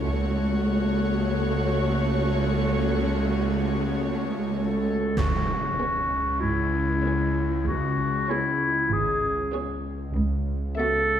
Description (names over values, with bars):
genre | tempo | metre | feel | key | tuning
cinematic, suspense film score | 96 BPM | 4/4 | straight | C# minor | A4 = 440 Hz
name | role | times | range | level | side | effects
warm chamber violin section | melody | 0.0-11.2 s | C#5 to E5 | -34 LUFS | left 3 dB | none
warm chamber viola section | accompaniment | 0.0-11.2 s | A3 to G#4 | -30 LUFS | right 2 dB | none
dark symphonic double bass section | bass | 0.0-0.6, 5.2-10.6 s | G#1 to C#2 | -30 LUFS | right 2 dB | none
warm chamber cello section | bass | 0.0-10.6 s | C#2 to G#2 | -29 LUFS | right 1 dB | none
warm chamber violin section | texture | 0.0-4.8 s | C#6 to F#6 | -40 LUFS | left 4 dB | none
bowed-like drone | drone | 0.1-11.2 s | C#2 | -28 LUFS | left 1 dB | built-in reverb
bright clarinet | second line | 4.5-11.2 s | E4 to A4 | -25 LUFS | left 1 dB | none
impact | sound effects | 5.2-7.7 s | none | -32 LUFS | equal | none
room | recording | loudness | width
wet scoring stage reverb, RT60 1.8 s | recorded in a church or concert hall | -22 LUFS | side -9 dB against mid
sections
0.0-5.2 A section; 5.2-11.2 B section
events
impact 5.2-7.7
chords
0.0 F#m/C#; 5.2 C#m7; 10.2 Bsus4/C#